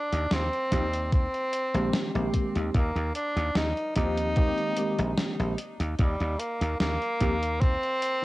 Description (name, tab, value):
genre	vaporwave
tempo	74 BPM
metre	4/4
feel	swing 54% on 16ths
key	Eb major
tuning	A4 = 440 Hz
part	clear tenor saxophone	melody	0.0-8.2 s	G3 to Eb4	-29 LUFS	equal	cassette tape, tape echo
part	dry thumbed slap bass	bass	0.1-7.7 s	Bb1 to Eb2	-29 LUFS	equal	none
part	gated 80s digital drum machine	drums	0.1-8.2 s	hi-hat, snare drum	-31 LUFS	equal	gated reverb, gated reverb snare, cassette tape
part	tine electric piano	accompaniment	0.7-8.2 s	Eb3 to G4	-31 LUFS	equal	medium stereo tremolo, analog chorus, cassette tape, analog delay
part	electronic kick drum	drums	0.7-7.8 s	none	-24 LUFS	equal	cassette tape
room	little or no reverb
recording	home recording on cassette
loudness	-25 LUFS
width	side -18 dB against mid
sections	0.0-8.2 A section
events	none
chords	0.0 Eb5; 1.1 Bb13sus4; 2.7 Eb69; 4.4 Abmaj9/Eb; 5.6 Eb; 7.6 Bbsus4 (rootless)